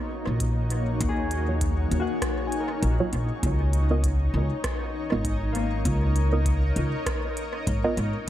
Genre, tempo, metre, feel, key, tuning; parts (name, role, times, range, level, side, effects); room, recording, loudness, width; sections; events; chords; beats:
ambient dub; 99 BPM; 4/4; swing 58% on 16ths; A4 = 440 Hz
granular cloud pad; sustained chords; 0.0-8.3 s; Bb3 to Eb5; -31 LUFS; left 1 dB; built-in reverb
filtered dub chord stab; stabs; 0.3-7.9 s; Gb3 to Eb5; -30 LUFS; right 3 dB; chorus, cassette tape, dub echo
upright bass; bass; 0.3-8.1 s; Ab1 to Eb2; -24 LUFS; equal
electronic kick drum; drums; 0.4-7.8 s; -31 LUFS; equal; overdrive
organic electronic drum kit; drums; 0.4-8.1 s; hi-hat, rim click; -35 LUFS; right 1 dB; overdrive, dub echo
concert harp; arpeggios; 1.1-8.3 s; Bb3 to Ab5; -36 LUFS; left 5 dB; dub echo
little or no reverb; echo-heavy mix; -23 LUFS; side -12 dB against mid
0.0-8.3 A section
filter sweep on synth stab 0.0-8.3
0.0 Ebm9; 3.4 Db13
0.40 | 1.00 1.61 2.22 2.82 | 3.43 4.03 4.64 5.25 | 5.85 6.46 7.07 7.67 | 8.28